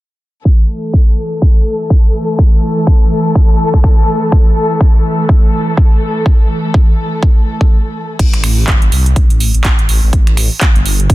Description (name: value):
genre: bass house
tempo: 124 BPM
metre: 4/4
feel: swing 58% on 16ths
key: unclear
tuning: A4 = 438 Hz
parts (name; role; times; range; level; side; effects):
- dark chamber string section; sustained chords; 0.5-8.2 s; E3 to A4; -16 LUFS; left 1 dB; vintage 12-bit sampler grit, sidechain pumping
- electronic kick drum; drums; 0.5-11.1 s; none; -9 LUFS; equal; none
- phased detuned saw bass; bass; 8.2-11.1 s; G1 to C2; -13 LUFS; equal; phaser, sidechain pumping
- big-room dance drum kit; drums; 8.2-11.1 s; crash cymbal, finger snaps, handclaps, hi-hat; -18 LUFS; right 2 dB; none
room: little or no reverb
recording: dense, heavily limited modern master, low-pass filter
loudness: -9 LUFS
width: side -18 dB against mid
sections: 0.5-8.2 A section; 8.2-11.1 B section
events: filter sweep 0.5-8.2; break 7.7-8.2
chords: 0.5 A5